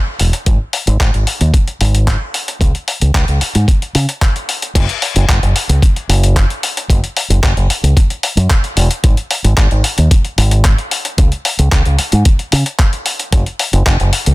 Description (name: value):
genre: nu-disco, nu disco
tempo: 112 BPM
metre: 4/4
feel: straight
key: unclear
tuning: A4 = 440 Hz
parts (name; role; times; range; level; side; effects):
- fingered electric bass with an envelope filter; bass; 0.2-14.3 s; E1 to C#3; -12 LUFS; equal; none
- dusty soul sampler-style drum kit; drums; 0.2-14.3 s; crash cymbal, handclaps, hi-hat; -18 LUFS; left 2 dB; none
- electronic kick drum; drums; 0.5-14.0 s; none; -12 LUFS; equal; none
room: little or no reverb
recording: dense, heavily limited modern master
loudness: -11 LUFS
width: side -21 dB against mid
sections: 0.0-4.8 A section; 4.8-14.3 B section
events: drop 4.8-14.3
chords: none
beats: | 0.47 1.00 1.54 2.07 | 2.61 3.15 3.68 4.22 | 4.75 5.29 5.82 6.36 | 6.89 7.43 7.97 8.50 | 9.04 9.57 10.11 10.64 | 11.18 11.72 12.25 12.79 | 13.32 13.86